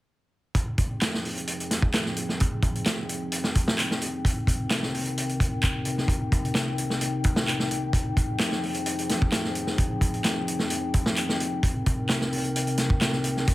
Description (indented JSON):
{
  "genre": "breakbeat, breaks",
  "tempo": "130 BPM",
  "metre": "4/4",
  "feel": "straight",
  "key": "F minor",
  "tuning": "A4 = 440 Hz",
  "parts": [
    { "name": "dark analog pad", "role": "sustained chords", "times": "0.5-13.5 s", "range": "C3 to G5", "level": "-29 LUFS", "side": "left 1 dB", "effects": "chorus, vintage 12-bit sampler grit, sidechain pumping" },
    { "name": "vintage drum kit", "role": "drums", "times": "0.5-13.5 s", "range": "hi-hat, kick drum, snare drum", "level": "-25 LUFS", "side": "equal", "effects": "none" },
    { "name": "electronic handclaps", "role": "drums", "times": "1.0-13.1 s", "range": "none", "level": "-30 LUFS", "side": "equal", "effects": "overdrive" }
  ],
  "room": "light reverb",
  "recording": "none",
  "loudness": "-23 LUFS",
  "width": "side -17 dB against mid",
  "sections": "0.6-13.5 A section",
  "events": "none",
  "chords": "0.6 Fm7; 4.2 Cm7; 7.9 Fm7; 11.6 Cm7"
}